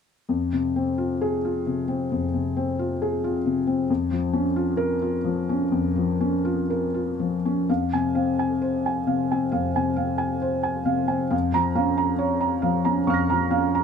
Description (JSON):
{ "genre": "neoclassical minimalist piano", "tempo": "65 BPM", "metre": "4/4", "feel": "uneven beats, rubato", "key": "F minor", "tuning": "A4 = 445 Hz", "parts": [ { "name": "felt-muted upright piano", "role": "solo", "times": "0.3-13.8 s", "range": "F2 to Bb6", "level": "-21 LUFS", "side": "left 1 dB", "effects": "none" } ], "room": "light reverb", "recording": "close, detailed microphones", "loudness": "-22 LUFS", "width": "side -6 dB against mid", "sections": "0.3-7.7 A section; 7.7-13.8 B section", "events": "none", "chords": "0.3 Fm; 3.9 Bbm/F; 7.7 Fm; 11.3 Bbm/F", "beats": "| 0.29 1.23 2.14 3.02 | 3.89 4.79 5.73 6.70 | 7.69 8.61 9.54 10.44 | 11.33 12.20 13.08" }